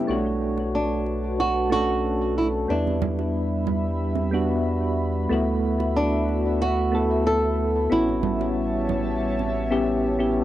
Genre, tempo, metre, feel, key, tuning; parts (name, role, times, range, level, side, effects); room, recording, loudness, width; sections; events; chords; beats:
sunset chillout; 92 BPM; 4/4; straight; A4 = 440 Hz
soft electric-piano-like synth keys; accompaniment; 0.0-10.4 s; G3 to C#5; -25 LUFS; equal; chorus, tremolo, auto-pan, cassette tape, tape echo
airy breathy pad; sustained chords; 0.0-10.4 s; G3 to B5; -30 LUFS; equal; chorus, cassette tape
round analog bass; bass; 0.1-10.4 s; A1 to E2; -28 LUFS; equal
bongos and congas; percussion; 0.6-9.5 s; -31 LUFS; right 10 dB
flamenco guitar; melody; 0.7-10.2 s; D4 to A4; -26 LUFS; right 1 dB; cassette tape, tape echo
moderate booth ambience, RT60 0.3 s; home recording on cassette; -21 LUFS; side -13 dB against mid
0.1-10.4 A section
filter sweep on analog synth pad 0.1-10.4
0.1 Bm7; 2.7 Em7; 5.3 D69; 7.9 A7
| 0.09 0.74 1.39 2.04 | 2.70 3.35 4.00 4.65 | 5.31 5.96 6.61 7.26 | 7.91 8.57 9.22 9.87